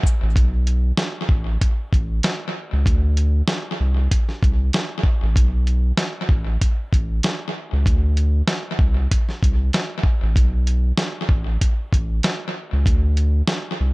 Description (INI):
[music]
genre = hip hop, boom-bap hip-hop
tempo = 96 BPM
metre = 4/4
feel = swing 56% on 16ths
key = unclear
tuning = A4 = 440 Hz
[part]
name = dusty soul sampler-style drum kit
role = drums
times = 0.0-13.7 s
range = hi-hat, kick drum, shaker, snare drum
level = -19 LUFS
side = equal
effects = tape echo
[part]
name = saturated sub bass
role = bass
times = 0.2-13.9 s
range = A1 to D2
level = -18 LUFS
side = equal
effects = none
[sound]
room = little or no reverb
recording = echo-heavy mix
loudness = -18 LUFS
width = side -23 dB against mid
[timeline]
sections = 0.4-13.9 A section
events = none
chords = none